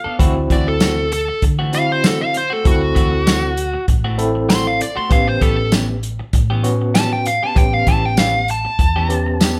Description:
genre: straight-eighth soul blues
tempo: 98 BPM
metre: 4/4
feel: straight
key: D mixolydian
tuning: A4 = 441 Hz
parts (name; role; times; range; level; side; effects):
- dark smooth lead guitar; melody; 0.0-9.6 s; F#4 to C6; -22 LUFS; equal; overdrive
- clean electric guitar; stabs; 0.0-9.6 s; E3 to A4; -29 LUFS; equal; none
- vintage muted fingered electric bass; bass; 0.1-9.6 s; A1 to D3; -24 LUFS; equal; none
- overdriven tine electric piano; accompaniment; 0.2-9.6 s; B3 to A4; -24 LUFS; equal; fast tremolo
- warm soul drum kit; drums; 0.2-9.6 s; hi-hat, kick drum, snare drum, tambourine; -19 LUFS; equal; none
room: light reverb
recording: band playing live in one room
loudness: -17 LUFS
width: mono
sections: 0.0-9.6 A section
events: lead electric guitar solo 0.0-9.6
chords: 0.2 D9; 5.1 A9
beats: | 0.19 0.81 1.42 2.04 | 2.65 3.27 3.88 4.50 | 5.11 5.72 6.34 6.95 | 7.57 8.18 8.79 9.41

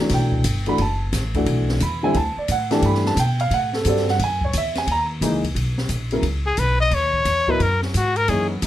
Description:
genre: modal jazz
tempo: 176 BPM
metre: 4/4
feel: swing 65% on 8ths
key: G major, B major from 5.6 s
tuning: A4 = 440 Hz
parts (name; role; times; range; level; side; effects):
- dark baby grand piano; accompaniment; 0.0-8.5 s; C#3 to B5; -21 LUFS; right 1 dB; none
- upright bass; bass; 0.1-8.7 s; F#1 to B2; -22 LUFS; equal; none
- open jazz drum kit; drums; 0.1-8.7 s; hi-hat, kick drum, ride cymbal, snare drum; -28 LUFS; left 1 dB; none
- clear trumpet; melody; 6.5-8.7 s; B3 to D#5; -20 LUFS; left 2 dB; none
room: light reverb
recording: lossy compression artefacts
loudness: -18 LUFS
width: side -13 dB against mid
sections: 0.0-5.6 A section; 5.6-8.7 A section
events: trumpet solo 5.6-8.7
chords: 0.0 Gmaj9; 4.2 F#13; 5.6 Bmaj9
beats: | 0.10 0.44 0.78 1.12 | 1.47 1.81 2.15 2.49 | 2.83 3.17 3.51 3.85 | 4.19 4.53 4.87 5.21 | 5.55 5.89 6.24 6.58 | 6.92 7.26 7.60 7.94 | 8.28 8.62

